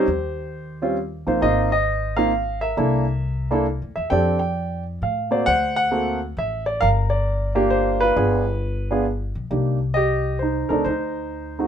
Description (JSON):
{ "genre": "jazz piano trio", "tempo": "134 BPM", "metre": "3/4", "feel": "swing 66% on 8ths", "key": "C minor", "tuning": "A4 = 437 Hz", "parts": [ { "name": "warm baby grand piano", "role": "melody", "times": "0.0-11.7 s", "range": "G3 to G5", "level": "-21 LUFS", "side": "right 1 dB", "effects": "none" }, { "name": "upright bass", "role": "bass", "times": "0.1-11.7 s", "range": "G1 to A2", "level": "-25 LUFS", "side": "left 1 dB", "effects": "none" } ], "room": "light reverb", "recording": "minimal, uncompressed stereo recording", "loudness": "-19 LUFS", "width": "side -8 dB against mid", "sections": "0.0-9.5 A section; 9.5-11.7 B section", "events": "none", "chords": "0.1 Eb6; 1.4 Ab69; 2.8 C13; 4.1 F69; 5.5 D7; 6.8 Gm7; 8.2 G7b9; 9.5 Cm7; 10.9 D7(no3)" }